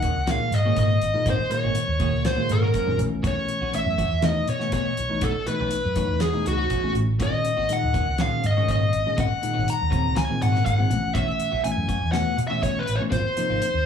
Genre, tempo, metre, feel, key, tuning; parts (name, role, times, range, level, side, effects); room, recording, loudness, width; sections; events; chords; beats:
electric jazz fusion; 121 BPM; 4/4; straight; A4 = 437 Hz
bluesy overdriven lead guitar; melody; 0.0-13.9 s; F#4 to Bb5; -25 LUFS; equal; distortion, tape echo
bell-like tine electric piano; accompaniment; 0.0-13.7 s; Bb2 to Eb4; -28 LUFS; left 2 dB; fast stereo tremolo
clean electric guitar; stabs; 0.0-13.6 s; Eb3 to Gb4; -33 LUFS; right 2 dB; wide subtle chorus
fingered electric bass; bass; 0.0-13.9 s; Ab1 to B2; -25 LUFS; equal
damped 70s drum kit; drums; 0.0-13.7 s; hi-hat, kick drum, snare drum; -30 LUFS; equal
light reverb; small room ambience; -21 LUFS; side -8 dB against mid
0.0-13.9 A section
0.0 Ab9sus4; 3.0 B9sus4; 7.2 Ab9sus4; 10.9 B9sus4; 13.1 Ab13
0.28 0.78 | 1.27 1.76 2.26 2.75 | 3.25 3.74 4.23 4.73 | 5.22 5.72 6.21 6.70 | 7.20 7.69 8.19 8.68 | 9.18 9.67 10.16 10.66 | 11.15 11.64 12.14 12.63 | 13.12 13.62